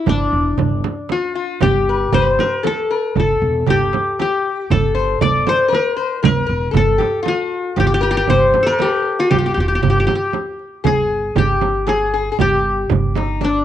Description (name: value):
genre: Arabic maqam ensemble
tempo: 117 BPM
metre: 3/4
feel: straight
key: G maqam rast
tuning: A4 = 439 Hz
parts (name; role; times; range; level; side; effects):
- qanun; melody; 0.0-13.6 s; D4 to D5; -18 LUFS; left 2 dB; cassette tape, plate reverb
- lap resonator guitar; second line; 0.0-13.6 s; D4 to D5; -23 LUFS; left 7 dB; cassette tape, plate reverb
- upright bass; bass; 0.1-13.6 s; E1 to G1; -21 LUFS; equal; none
- darbuka; percussion; 0.1-13.5 s; none; -22 LUFS; right 8 dB; none
- frame drum; percussion; 0.1-13.5 s; none; -22 LUFS; right 8 dB; none
room: moderate studio reverb, RT60 0.5 s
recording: home recording on cassette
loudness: -14 LUFS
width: side -11 dB against mid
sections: 0.0-10.8 A section; 10.8-13.6 B section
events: none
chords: none